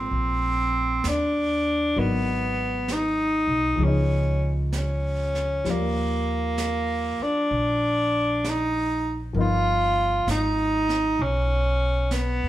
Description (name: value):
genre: jazz ballad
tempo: 65 BPM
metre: 4/4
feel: swing 66% on 8ths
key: unclear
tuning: A4 = 440 Hz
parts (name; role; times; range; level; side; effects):
- breathy tenor saxophone; melody; 0.0-12.5 s; Bb3 to F4; -23 LUFS; equal; none
- warm concert grand piano; accompaniment; 0.0-12.5 s; Bb2 to D5; -32 LUFS; left 4 dB; none
- upright bass; bass; 0.0-12.5 s; G1 to Eb2; -27 LUFS; equal; none
- jazz brush drum kit; drums; 0.1-12.5 s; brushed snare drum, hi-hat, snare drum; -37 LUFS; right 2 dB; none
room: moderate large studio reverb, RT60 1.1 s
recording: band playing live in one room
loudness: -21 LUFS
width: side -14 dB against mid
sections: 0.0-12.5 A section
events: none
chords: 0.0 Gm9 (rootless); 2.0 Abm7; 3.8 Db9; 5.6 Ebmaj9; 9.3 G7alt